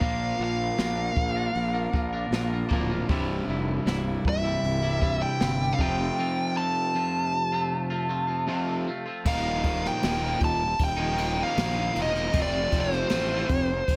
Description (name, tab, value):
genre	quiet-loud alternative rock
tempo	78 BPM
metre	4/4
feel	straight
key	unclear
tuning	A4 = 441 Hz
part	nasal lead guitar with a parked wah	melody	0.0-14.0 s	C5 to A5	-31 LUFS	equal	overdrive, tape echo
part	twangy electric guitar	arpeggios	0.0-9.2 s	C2 to Bb4	-36 LUFS	equal	lush chorus
part	crunchy overdriven guitar	riff	0.0-13.7 s	C2 to F4	-32 LUFS	equal	none
part	fuzz fingered electric bass	bass	0.0-14.0 s	C1 to Bb1	-33 LUFS	equal	overdrive
part	jazz brush drum kit	drums	0.0-14.0 s	crash cymbal, hi-hat, kick drum, snare drum	-32 LUFS	equal	none
room	light reverb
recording	none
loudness	-26 LUFS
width	mono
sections	0.0-9.3 A section; 9.3-14.0 B section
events	none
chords	0.0 Bb; 3.1 C; 5.8 Fadd9; 9.3 Ebsus2; 12.3 F